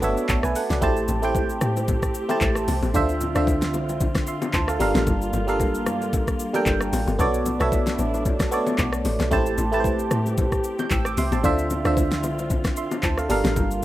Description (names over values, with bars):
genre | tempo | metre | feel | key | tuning
amapiano | 113 BPM | 4/4 | swing 55% on 16ths | unclear | A4 = 441 Hz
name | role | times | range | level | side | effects
barking FM electric piano | accompaniment | 0.0-13.8 s | D3 to G6 | -24 LUFS | right 2 dB | chorus
dark studio string section | sustained chords | 0.0-13.8 s | D3 to G4 | -32 LUFS | left 1 dB | sidechain pumping
deep log drum bass | bass | 0.0-13.8 s | G1 to A2 | -26 LUFS | equal | none
smooth R&B drum kit | drums | 0.0-13.8 s | handclaps, hi-hat, kick drum, rim click, shaker, snare drum | -26 LUFS | left 1 dB | none
congas and bongos | percussion | 0.8-13.7 s | none | -30 LUFS | left 4 dB | none
room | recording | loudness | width
little or no reverb | rough home demo mix | -20 LUFS | side -14 dB against mid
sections
0.0-13.8 A section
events
none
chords
0.0 Bm7; 0.8 Am7; 2.9 Dm7; 4.8 Gm7; 7.2 Bm7; 9.3 Am7; 11.4 Dm7; 13.3 Gm7